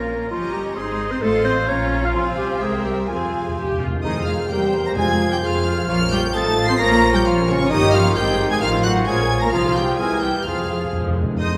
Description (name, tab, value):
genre	quick classical-period movement for symphony orchestra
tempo	130 BPM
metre	2/4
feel	straight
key	F minor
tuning	A4 = 439 Hz
part	warm chamber violin section	melody	0.0-11.6 s	C5 to C7	-29 LUFS	equal	none
part	mellow clarinet	second line	0.0-11.6 s	Db4 to F5	-27 LUFS	equal	none
part	rich chamber violin section	second line	0.0-11.6 s	Db5 to C6	-31 LUFS	equal	none
part	rich chamber viola section	accompaniment	0.0-11.6 s	F3 to C5	-30 LUFS	equal	none
part	warm chamber cello section	bass	0.0-11.6 s	F2 to F4	-28 LUFS	equal	none
part	warm studio double bass section	bass	0.0-11.6 s	F1 to F2	-29 LUFS	equal	none
part	timpani	percussion	3.1-5.6, 9.5-11.4 s	F2 to C3	-29 LUFS	equal	none
part	mellow hollow large flute ensemble	second line	4.0-11.6 s	Db5 to C6	-31 LUFS	equal	none
part	warm oboe	second line	4.0-11.5 s	Eb4 to Eb5	-33 LUFS	equal	none
part	dark bassoon	accompaniment	4.0-11.6 s	Eb3 to Ab3	-30 LUFS	equal	none
part	mellow French horn section	sustained chords	4.0-11.6 s	Ab3 to Ab4	-26 LUFS	equal	none
room	wet concert hall reverb, RT60 1.8 s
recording	none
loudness	-19 LUFS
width	mono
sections	0.0-4.0 A section; 4.0-11.4 A section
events	timpani fill 3.1-4.0, 10.5-11.4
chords	0.3 Eb7/G; 0.8 Ab; 1.2 F7/A; 1.7 Bbm; 2.1 Fm/C; 2.6 C7; 3.1 Fm; 4.5 C7/E; 5.0 Fm; 5.9 Bbm; 6.3 F7/A; 6.8 Bbm; 7.7 Eb7/G; 8.2 Ab; 8.6 F7/A; 9.1 Bbm; 9.5 Fm/C; 10.0 C7; 10.5 Fm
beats	| 0.31 0.77 | 1.23 1.69 | 2.15 2.61 | 3.09 3.57 | 4.04 4.50 | 4.97 5.43 | 5.89 6.34 | 6.80 7.26 | 7.71 8.16 | 8.62 9.07 | 9.54 10.00 | 10.47 10.94 | 11.41